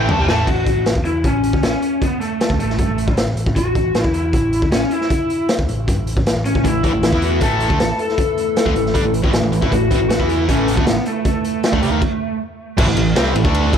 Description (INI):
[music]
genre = hard rock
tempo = 156 BPM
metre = 4/4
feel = straight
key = unclear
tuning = A4 = 440 Hz
[part]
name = lead guitar through a small cranked amp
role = melody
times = 0.0-12.4 s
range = A3 to A5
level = -20 LUFS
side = left 1 dB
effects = overdrive
[part]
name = analog string pad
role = sustained chords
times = 0.0-0.4, 6.6-13.8 s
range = A3 to B4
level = -28 LUFS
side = right 1 dB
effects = ensemble chorus
[part]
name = distorted electric guitar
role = riff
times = 0.0-0.5, 6.6-13.8 s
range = A2 to E4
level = -24 LUFS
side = left 10 dB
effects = overdrive
[part]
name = sludgy distorted guitar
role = riff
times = 0.0-0.5, 6.6-13.8 s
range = A2 to E4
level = -22 LUFS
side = right 12 dB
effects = overdrive
[part]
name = overdriven picked electric bass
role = bass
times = 0.0-13.8 s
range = A1 to A2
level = -21 LUFS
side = equal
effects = none
[part]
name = raw garage drum kit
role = drums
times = 0.1-13.8 s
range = crash cymbal, hi-hat, kick drum, ride cymbal, snare drum, toms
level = -19 LUFS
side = equal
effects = none
[sound]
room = light reverb, studio reverb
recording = none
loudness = -15 LUFS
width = side -8 dB against mid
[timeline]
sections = 0.5-12.8 A section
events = drum fill 0.0-0.5; stop 12.0-12.8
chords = 0.5 A5